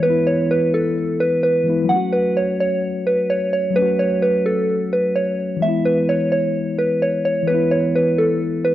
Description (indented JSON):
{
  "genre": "hip hop",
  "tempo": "129 BPM",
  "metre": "4/4",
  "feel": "half-time",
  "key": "unclear",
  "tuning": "A4 = 440 Hz",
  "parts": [
    { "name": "soft synth bell", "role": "melody", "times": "0.0-8.7 s", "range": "A4 to F#5", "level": "-18 LUFS", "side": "right 1 dB", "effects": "chorus, low-pass filter" },
    { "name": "mellow tine electric piano", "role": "accompaniment", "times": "0.0-8.7 s", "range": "E3 to F#4", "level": "-21 LUFS", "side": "left 2 dB", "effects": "auto-pan, low-pass filter" }
  ],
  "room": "light reverb",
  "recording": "worn, warbling old tape, cassette tape, warbly pitch drift",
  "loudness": "-16 LUFS",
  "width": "side -13 dB against mid",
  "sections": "0.0-8.7 A section",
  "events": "none",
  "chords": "0.0 E; 1.9 F#m; 5.6 E"
}